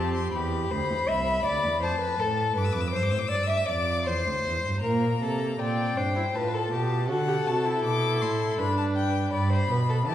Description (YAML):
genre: classical, baroque-style fugue for string quartet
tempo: 80 BPM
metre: 3/4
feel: straight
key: unclear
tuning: A4 = 439 Hz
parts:
  - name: rich violin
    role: melody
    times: 0.0-10.1 s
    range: F#5 to E6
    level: -31 LUFS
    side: left 6 dB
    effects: none
  - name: rich violin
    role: second line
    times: 0.0-10.1 s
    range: G4 to E5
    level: -28 LUFS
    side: left 1 dB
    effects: none
  - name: clear viola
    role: accompaniment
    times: 0.0-0.3, 4.8-9.3 s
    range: Bb3 to G4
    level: -32 LUFS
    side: right 2 dB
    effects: none
  - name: rich cello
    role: bass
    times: 0.0-10.1 s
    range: C2 to E3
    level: -28 LUFS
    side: right 2 dB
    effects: none
room: wet recital hall reverb, RT60 1.5 s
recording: heard from further back in the room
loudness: -24 LUFS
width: side -11 dB against mid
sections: 0.0-4.8 A section; 4.8-10.1 B section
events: none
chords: 0.3 C; 1.8 F; 2.6 G7; 4.1 C; 4.8 C7(no3)/Bb; 6.4 F/A; 7.1 D7; 8.6 G